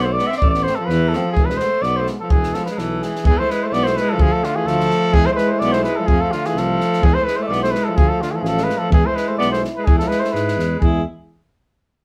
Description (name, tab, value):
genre	balkan folk, Balkan brass band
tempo	127 BPM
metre	2/4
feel	swing 54% on 16ths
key	E phrygian dominant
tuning	A4 = 440 Hz
part	warm flugelhorn	melody	0.0-11.0 s	F4 to E5	-23 LUFS	equal	none
part	bright alto saxophone	second line	0.0-11.0 s	D3 to E4	-26 LUFS	equal	none
part	dark tuba	bass	0.0-11.0 s	E1 to G#2	-26 LUFS	equal	none
part	clear euphonium	accompaniment	0.2-11.0 s	B3 to F4	-30 LUFS	equal	none
part	warm trombone	accompaniment	0.2-11.0 s	G#3 to A3	-31 LUFS	equal	none
part	compact cocktail drum kit	percussion	0.2-11.0 s	kick drum, snare drum	-21 LUFS	equal	none
room	moderate studio reverb, RT60 0.5 s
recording	band playing live in one room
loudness	-18 LUFS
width	mono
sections	0.0-3.2 A section; 3.2-10.8 B section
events	none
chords	0.4 Am; 1.4 E; 4.2 Dm; 5.1 E; 6.1 F; 7.0 E; 8.0 Dm; 8.9 E